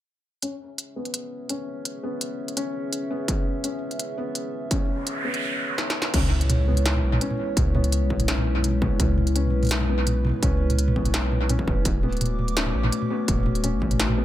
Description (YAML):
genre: half-time drum and bass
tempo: 168 BPM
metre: 4/4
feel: half-time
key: C# phrygian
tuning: A4 = 440 Hz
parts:
  - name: dark analog pad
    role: sustained chords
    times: 0.4-14.2 s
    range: G#3 to D6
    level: -30 LUFS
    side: left 1 dB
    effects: chorus, sidechain pumping
  - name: felt-muted upright piano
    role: arpeggios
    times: 0.4-14.2 s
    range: B3 to C#4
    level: -31 LUFS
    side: left 2 dB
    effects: low-pass filter, analog delay
  - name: industrial drum kit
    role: drums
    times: 0.4-14.2 s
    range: crash cymbal, hi-hat, snare drum, toms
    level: -26 LUFS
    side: right 1 dB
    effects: analog delay
  - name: electronic kick drum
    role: drums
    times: 3.3-13.9 s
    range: none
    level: -25 LUFS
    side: equal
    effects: distortion
  - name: noise sweep and impact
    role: sound effects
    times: 4.9-7.6 s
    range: none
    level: -31 LUFS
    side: right 2 dB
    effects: none
  - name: saturated sub bass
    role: bass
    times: 6.1-14.2 s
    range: D1 to C#2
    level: -24 LUFS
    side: equal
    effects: none
room: little or no reverb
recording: echo-heavy mix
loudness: -22 LUFS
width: side -13 dB against mid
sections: 0.4-6.1 A section; 6.1-14.2 B section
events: filter sweep on felt piano 0.4-6.1; noise sweep 4.9-6.1; drum fill 5.8-6.1; drop 6.1-14.2; impact 6.1-7.6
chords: 0.4 C#m; 11.9 D